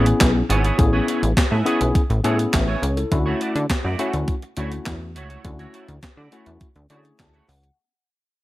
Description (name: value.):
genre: early-eighties boogie funk.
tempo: 103 BPM.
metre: 4/4.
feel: straight.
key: unclear.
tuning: A4 = 441 Hz.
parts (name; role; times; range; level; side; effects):
tine electric piano; accompaniment; 0.0-7.8 s; A3 to C#6; -24 LUFS; left 3 dB; none.
clean electric guitar; riff; 0.0-7.7 s; A3 to E5; -28 LUFS; right 4 dB; ensemble chorus.
plucky analog bass; bass; 0.0-7.7 s; G#1 to D3; -22 LUFS; equal; none.
clean 12-bit digital drum machine; drums; 0.1-7.8 s; handclaps, hi-hat, kick drum, snare drum; -21 LUFS; equal; overdrive.
room: digital ambience.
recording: none.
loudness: -18 LUFS.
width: side -17 dB against mid.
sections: 0.0-7.8 A section.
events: fade-out 0.0-7.8; tine electric piano fill 6.6-7.8.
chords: 0.0 Amaj9; 3.1 Dmaj9.